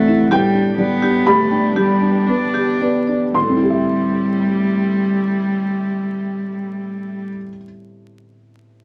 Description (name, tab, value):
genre	neoclassical piano and strings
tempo	55-65 BPM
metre	3/4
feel	rubato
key	A minor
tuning	A4 = 440 Hz
part	warm cello	second line	0.0-7.3 s	G3 to D4	-21 LUFS	equal	none
part	felt-muted upright piano	accompaniment	0.0-8.8 s	A2 to C6	-20 LUFS	equal	none
part	dark chamber string section	sustained chords	0.0-7.3 s	A3 to A4	-32 LUFS	equal	none
part	marimba with medium hard mallets	arpeggios	0.1-3.2 s	G4 to G5	-26 LUFS	equal	none
room	wet studio reverb, RT60 0.8 s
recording	vinyl crackle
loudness	-18 LUFS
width	mono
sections	0.0-3.3 A section; 3.3-6.6 B section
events	slowing down 0.0-3.3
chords	0.3 G/A; 3.3 Am7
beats	| 0.31 1.27 2.27 | 3.34 4.41 5.48